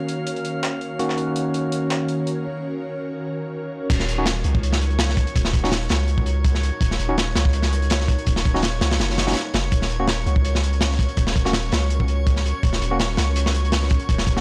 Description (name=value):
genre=drum and bass, jungle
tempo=165 BPM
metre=4/4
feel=swing 54% on 16ths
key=Eb minor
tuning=A4 = 440 Hz
part: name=ethereal airy pad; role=sustained chords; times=0.0-14.4 s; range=Eb3 to Db5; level=-34 LUFS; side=equal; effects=ensemble chorus, built-in reverb, vintage 12-bit sampler grit
part: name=barky tine electric piano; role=stabs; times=0.0-14.4 s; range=Eb3 to Gb4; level=-29 LUFS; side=equal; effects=dub echo
part: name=drifting glass-harmonics texture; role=texture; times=0.0-14.4 s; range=Db5 to F6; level=-36 LUFS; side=equal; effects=chorus, built-in reverb
part: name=breakbeat sampler-style drum kit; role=drums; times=0.1-2.4 s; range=hi-hat, snare drum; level=-32 LUFS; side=equal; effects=high-pass filter on hats, high-pass filter on snare
part: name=long sustained 808-style bass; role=bass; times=3.9-14.4 s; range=Eb1 to Db2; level=-24 LUFS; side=equal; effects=none
part: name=crunchy breakbeat drum kit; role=drums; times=3.9-14.4 s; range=crash cymbal, hi-hat, kick drum, snare drum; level=-24 LUFS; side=equal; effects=none
room=light reverb, studio ambience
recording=dry, gritty hardware recording, cassette tape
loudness=-22 LUFS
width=mono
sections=0.0-3.9 A section; 3.9-14.4 B section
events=break 2.4-3.9; drop 3.9-14.4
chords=0.0 Ebm7